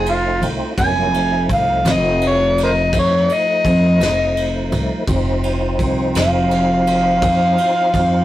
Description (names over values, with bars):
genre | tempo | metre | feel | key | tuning
slow blues | 56 BPM (dotted quarters) | 12/8 | straight | unclear | A4 = 444 Hz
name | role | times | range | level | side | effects
overdriven harmonica | melody | 0.0-8.2 s | F4 to Ab5 | -17 LUFS | left 1 dB | none
tonewheel organ | sustained chords | 0.0-8.2 s | F3 to F4 | -23 LUFS | equal | slow rotary speaker, overdrive, chorus vibrato
upright bass | bass | 0.0-8.2 s | F1 to F2 | -18 LUFS | equal | none
vintage brush drum kit | drums | 0.1-8.1 s | kick drum, ride cymbal, snare drum | -25 LUFS | equal | none
room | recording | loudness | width
moderate booth ambience, RT60 0.2 s | rough rehearsal-room recording, warm saturation | -14 LUFS | side -14 dB against mid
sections
0.0-8.2 A section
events
harmonica solo 0.0-8.2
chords
0.0 F7